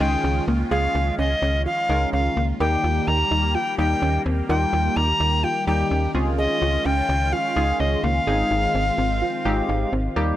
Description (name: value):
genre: pop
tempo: 127 BPM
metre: 4/4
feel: straight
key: Ab major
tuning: A4 = 441 Hz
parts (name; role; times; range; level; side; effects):
- bright alto recorder; melody; 0.0-9.9 s; Eb5 to Bb5; -23 LUFS; left 1 dB; none
- funky polysynth comp; accompaniment; 0.0-10.4 s; G3 to Bb4; -28 LUFS; equal; chorus
- phased analog pad; sustained chords; 0.0-10.4 s; Eb3 to G4; -29 LUFS; equal; phaser, chorus
- soft round pluck; arpeggios; 0.0-10.3 s; Bb3 to Bb4; -29 LUFS; right 1 dB; chorus, tape echo
- slap-like FM bass; bass; 0.0-10.3 s; Ab1 to Eb2; -23 LUFS; equal; none
room: light reverb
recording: dry, gritty hardware recording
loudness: -19 LUFS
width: side -13 dB against mid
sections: 0.0-10.2 A section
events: none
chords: 0.0 Dbadd9; 2.6 Eb; 6.1 Dbadd9; 8.3 Ab6